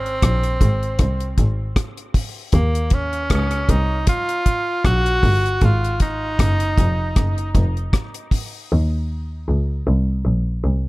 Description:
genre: dub reggae.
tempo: 78 BPM.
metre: 4/4.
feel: swing 57% on 16ths.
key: Eb dorian.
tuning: A4 = 443 Hz.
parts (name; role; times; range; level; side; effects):
clear tenor saxophone; melody; 0.0-7.5 s; Bb3 to Gb4; -23 LUFS; right 1 dB; dub echo.
clear double bass; bass; 0.0-10.8 s; F1 to Eb2; -19 LUFS; equal; none.
deep reggae drum kit; drums; 0.1-8.5 s; hi-hat, kick drum, rim click; -19 LUFS; equal; none.
room: small room reverb.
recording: none.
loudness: -17 LUFS.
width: side -20 dB against mid.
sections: 0.0-8.7 A section; 8.7-10.9 B section.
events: none.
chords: 0.0 Ab; 2.5 Ebm; 5.6 Ab5; 8.7 Eb5.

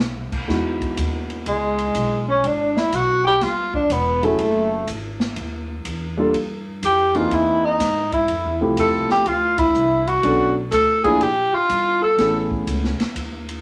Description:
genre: jazz, small-group swing and bop.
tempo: 123 BPM.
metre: 4/4.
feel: swing 66% on 8ths.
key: unclear.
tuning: A4 = 440 Hz.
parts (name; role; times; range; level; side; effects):
upright bass; bass; 0.0-13.6 s; E1 to G#2; -31 LUFS; equal; none.
swinging big-band drum kit; drums; 0.3-13.6 s; crash cymbal, hi-hat, kick drum, ride cymbal, snare drum; -32 LUFS; equal; none.
dark concert grand piano; accompaniment; 0.5-12.9 s; E3 to A4; -24 LUFS; equal; none.
mellow tenor saxophone; melody; 1.5-12.5 s; G#3 to A4; -21 LUFS; equal; none.
growling alto saxophone; second line; 1.5-12.5 s; G#3 to A4; -26 LUFS; equal; none.
room: wet small room reverb, RT60 0.6 s.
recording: none.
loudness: -20 LUFS.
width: mono.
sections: 0.5-13.6 A section.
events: band accent 9.5.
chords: 0.5 Emaj7; 2.4 G#m7b5; 3.4 Gsus2; 4.4 F#m9; 6.3 Gm7; 7.3 C7alt; 8.3 Fmaj7; 10.2 Bm7; 11.2 A#5; 12.2 Amaj9.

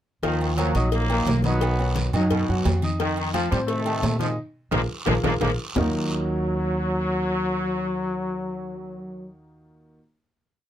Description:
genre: latin, salsa.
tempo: 174 BPM.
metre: 4/4.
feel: straight.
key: Eb minor.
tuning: A4 = 440 Hz.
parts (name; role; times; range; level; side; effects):
bright trombone section; second line; 0.2-5.9 s; Bb2 to Gb3; -29 LUFS; equal; none.
warm upright piano; accompaniment; 0.2-10.0 s; D#3 to Eb6; -30 LUFS; equal; none.
upright bass; bass; 0.2-10.0 s; Bb1 to Bb2; -26 LUFS; equal; none.
agogo bells and timbales; percussion; 0.2-5.8 s; none; -32 LUFS; right 5 dB; none.
congas; percussion; 0.2-5.8 s; none; -31 LUFS; left 3 dB; none.
cowbell and bongos; percussion; 0.2-5.8 s; none; -32 LUFS; left 5 dB; none.
guiro; percussion; 0.2-5.8 s; none; -37 LUFS; right 3 dB; none.
bright trombone section; melody; 0.4-9.3 s; C3 to Cb4; -26 LUFS; left 1 dB; none.
room: little or no reverb.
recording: close, detailed microphones.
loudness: -22 LUFS.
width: side -11 dB against mid.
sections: 0.2-5.8 mambo (horn riffs); 5.8-8.5 final chord.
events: band accent 4.4-5.8; drum fill 4.9-5.8.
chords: 0.2 Ebmadd9; 1.6 B; 3.0 F7; 4.4 Bb7(no3); 5.8 Ebmadd9.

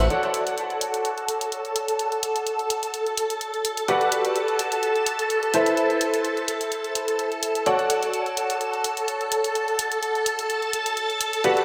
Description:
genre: piano house.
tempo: 127 BPM.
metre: 4/4.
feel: swing 54% on 16ths.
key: D major.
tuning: A4 = 440 Hz.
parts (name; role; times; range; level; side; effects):
string machine, violins; sustained chords; 0.0-11.6 s; F#4 to A5; -27 LUFS; equal; ensemble chorus.
clear baby grand piano; riff; 0.1-11.6 s; E4 to F#5; -28 LUFS; equal; ensemble chorus, diffuse ambient delay.
electronic hi-hat; drums; 0.1-11.6 s; none; -32 LUFS; equal; none.
room: wet plate reverb, RT60 1.4 s, digital ambience.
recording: dreamy mix soaked in reverb.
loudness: -24 LUFS.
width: mono.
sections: 0.1-11.6 A section.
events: filter sweep on string machine 0.1-11.6.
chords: 0.1 Dmaj7; 3.9 Gmaj7; 5.5 Amadd9; 7.7 Dmaj7.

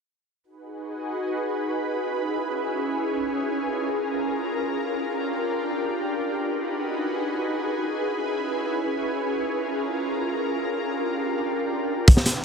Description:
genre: drum and bass, jungle.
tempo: free time.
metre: none.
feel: none.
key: G# dorian.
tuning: A4 = 440 Hz.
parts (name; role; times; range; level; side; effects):
ethereal airy pad; sustained chords; 0.6-12.4 s; C#4 to B4; -25 LUFS; equal; ensemble chorus, built-in reverb.
crunchy breakbeat drum kit; drums; 12.1-12.3 s; hi-hat, kick drum, snare drum; -14 LUFS; equal; soft clipping on snare.
room: moderate plate reverb, RT60 1.2 s, studio reverb.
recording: dense, heavily limited modern master.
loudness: -23 LUFS.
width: side -6 dB against mid.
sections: 0.4-12.4 A section.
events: none.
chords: 0.4 G#m7; 1.9 C#m7; 3.3 A#m7; 4.8 Gm7; 6.3 G#m7; 7.7 C#m7; 9.2 A#m7; 10.6 Gm7.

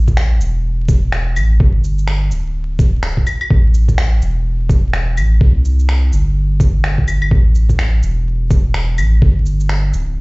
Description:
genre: future garage.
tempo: 126 BPM.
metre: 4/4.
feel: swing 60% on 16ths.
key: A minor.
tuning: A4 = 439 Hz.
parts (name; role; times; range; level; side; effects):
soft dub sub bass; bass; 0.0-10.2 s; D1 to C2; -14 LUFS; equal; sidechain pumping.
electronic kick drum; drums; 0.1-9.3 s; none; -13 LUFS; equal; none.
electronic shaker, finger snaps and claves; drums; 0.1-10.0 s; none; -22 LUFS; left 1 dB; none.
room: little or no reverb.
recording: played on a big sound system in a bare room, large studio reverb, vinyl crackle, nothing above 7.8 kHz.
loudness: -12 LUFS.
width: side -27 dB against mid.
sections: 0.0-10.2 A section.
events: none.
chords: none.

